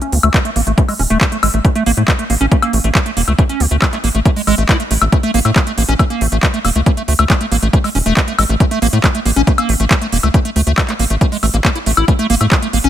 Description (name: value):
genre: psychedelic trance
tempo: 138 BPM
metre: 4/4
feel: straight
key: unclear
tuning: A4 = 440 Hz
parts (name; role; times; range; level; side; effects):
- liquid acid bass; riff; 0.0-12.9 s; G#3 to E4; -18 LUFS; right 1 dB; chorus, auto-pan, sidechain pumping, tape echo
- techno drum kit; drums; 0.0-12.9 s; handclaps, hi-hat, woodblock; -18 LUFS; left 1 dB; none
- tight sequencer bass; bass; 0.1-12.9 s; E1 to A2; -15 LUFS; equal; none
- electronic kick drum; drums; 0.3-12.6 s; none; -13 LUFS; equal; none
room: digital ambience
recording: none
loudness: -12 LUFS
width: side -11 dB against mid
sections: 0.0-12.9 A section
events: none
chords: 0.0 A5